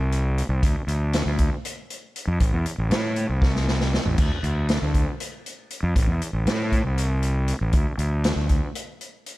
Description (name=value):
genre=psychedelic rock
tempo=236 BPM (eighths)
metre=7/8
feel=straight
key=A minor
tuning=A4 = 440 Hz
part: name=fuzz fingered electric bass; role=bass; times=0.0-8.6 s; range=A1 to A2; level=-22 LUFS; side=equal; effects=overdrive
part: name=vintage drum kit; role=drums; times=0.1-9.4 s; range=crash cymbal, hi-hat, kick drum, snare drum, toms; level=-24 LUFS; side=equal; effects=none
room=little or no reverb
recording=none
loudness=-21 LUFS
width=side -18 dB against mid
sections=0.0-9.4 A section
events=drum fill 3.4-4.2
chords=none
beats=0.12 0.38 | 0.63 0.89 1.14 1.39 1.65 1.90 2.15 | 2.41 2.66 2.91 3.17 3.42 3.67 3.93 | 4.18 4.44 4.69 4.94 5.20 5.45 5.70 | 5.96 6.21 6.46 6.72 6.97 7.23 7.48 | 7.73 7.99 8.24 8.49 8.75 9.00 9.26